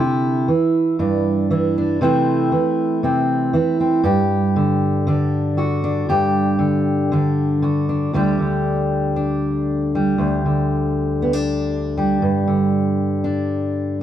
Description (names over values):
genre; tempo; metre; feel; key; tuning
folk, solo fingerstyle acoustic guitar; 118 BPM; 4/4; straight; unclear; A4 = 439 Hz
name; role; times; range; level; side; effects
fingerpicked steel-string acoustic guitar; solo; 0.0-14.0 s; D2 to G4; -16 LUFS; equal; none
room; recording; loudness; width
light reverb; dry, close 1970s-style studio recording; -16 LUFS; side -10 dB against mid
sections
0.0-8.1 A section; 8.1-14.0 B section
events
none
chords
0.0 Cadd9; 2.0 Am/C; 4.0 G5; 8.1 Dsus4; 12.2 G5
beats
0.49 1.01 1.52 | 2.02 2.53 3.04 3.54 | 4.04 4.55 5.06 5.57 | 6.08 6.59 7.11 7.63 | 8.15 8.66 9.18 9.69 | 10.20 10.71 11.21 11.72 | 12.22 12.73 13.24 13.74